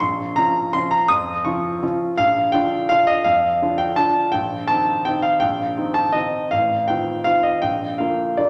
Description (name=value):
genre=classical, piano waltz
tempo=166 BPM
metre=3/4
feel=uneven beats, rubato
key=Bb major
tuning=A4 = 435 Hz
part: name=warm grand piano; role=solo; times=0.0-8.5 s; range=A1 to Eb6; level=-20 LUFS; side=equal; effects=none
room=wet recital hall reverb, RT60 1.6 s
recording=none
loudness=-20 LUFS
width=mono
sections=0.0-8.5 A section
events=none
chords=0.0 Bbm; 2.2 Bb; 4.3 Cm7/Bb; 6.5 F7/A; 7.6 Bb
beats=| 0.03 0.38 0.75 | 1.11 1.46 1.83 | 2.19 2.54 2.90 | 3.25 3.61 3.97 | 4.33 4.69 5.06 | 5.42 5.78 6.15 | 6.52 6.89 7.26 | 7.63 7.99 8.39